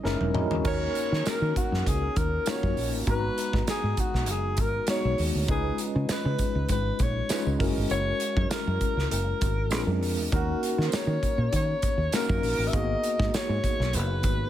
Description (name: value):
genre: polished 1980s jazz-funk pop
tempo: 99 BPM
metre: 4/4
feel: swing 54% on 16ths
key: unclear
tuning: A4 = 441 Hz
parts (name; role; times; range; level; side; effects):
- warm alto saxophone; melody; 0.0-14.5 s; F#4 to E5; -31 LUFS; left 2 dB; none
- tine electric piano; accompaniment; 0.0-14.5 s; G#3 to A#5; -30 LUFS; left 1 dB; medium stereo tremolo, lush chorus
- fingered electric bass; bass; 0.0-14.4 s; E1 to D#3; -28 LUFS; equal; none
- modern studio drum kit; drums; 0.1-14.4 s; crash cymbal, hi-hat, kick drum, snare drum, toms; -30 LUFS; equal; none
- tambourine; percussion; 1.3-13.5 s; none; -42 LUFS; right 10 dB; none
room: little or no reverb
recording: none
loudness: -24 LUFS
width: side -12 dB against mid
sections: 0.7-14.5 A section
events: drum fill 0.0-0.7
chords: 0.0 F#13; 0.7 D#m7; 3.1 G#m7; 5.5 C#7; 7.6 F#7; 9.7 A#7; 10.3 D#m7; 12.7 G#m7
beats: 0.05 | 0.65 1.26 1.86 2.47 | 3.07 3.68 4.28 4.88 | 5.49 6.09 6.70 7.30 | 7.91 8.51 9.11 9.72 | 10.32 10.92 11.53 12.13 | 12.73 13.34 13.94